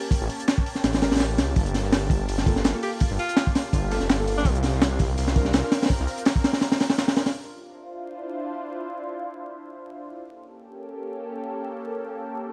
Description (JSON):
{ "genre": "drum and bass, jungle", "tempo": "166 BPM", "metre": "4/4", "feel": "swing 55% on 16ths", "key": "D minor", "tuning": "A4 = 440 Hz", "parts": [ { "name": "lush unison pad", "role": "sustained chords", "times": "0.0-12.5 s", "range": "Bb3 to A5", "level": "-36 LUFS", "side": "equal", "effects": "chorus, phaser" }, { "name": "deep mellow chord stab", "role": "stabs", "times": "0.0-7.3 s", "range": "Bb3 to Bb4", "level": "-36 LUFS", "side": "equal", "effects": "subtle chorus, dub echo" }, { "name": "breakbeat sampler-style drum kit", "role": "drums", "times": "0.1-7.3 s", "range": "hi-hat, snare drum", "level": "-39 LUFS", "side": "equal", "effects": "high-pass filter on hats, high-pass filter on snare, high-pass filter on room" }, { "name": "crunchy breakbeat drum kit", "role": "drums", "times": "0.1-7.3 s", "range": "hi-hat, kick drum, snare drum", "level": "-25 LUFS", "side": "equal", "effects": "none" }, { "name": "detuned saw bass", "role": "bass", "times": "0.2-6.1 s", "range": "F1 to C#2", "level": "-28 LUFS", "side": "equal", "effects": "none" }, { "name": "bright alto saxophone", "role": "melody", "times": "2.8-4.5 s", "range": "D4 to G4", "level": "-34 LUFS", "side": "equal", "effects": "vintage 12-bit sampler grit, dub echo" } ], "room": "light reverb, small room ambience", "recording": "dry, gritty hardware recording, vinyl crackle", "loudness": "-24 LUFS", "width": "mono", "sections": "0.0-7.3 A section; 7.3-12.5 B section", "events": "drop 0.0-7.3; kick drops out 6.6-7.3", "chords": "0.0 A7b9; 1.6 Gm9; 4.5 C7sus4; 7.3 Dm9; 10.2 A7b9", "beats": "| 0.12 0.48 0.84 1.20 | 1.56 1.92 2.29 2.65 | 3.01 3.37 3.73 4.09 | 4.46 4.82 5.18 5.54 | 5.90 6.26 6.62 6.99 | 7.35 7.71 8.07 8.43 | 8.79 9.15 9.52 9.88 | 10.24 10.60 10.96 11.32 | 11.68 12.04 12.41" }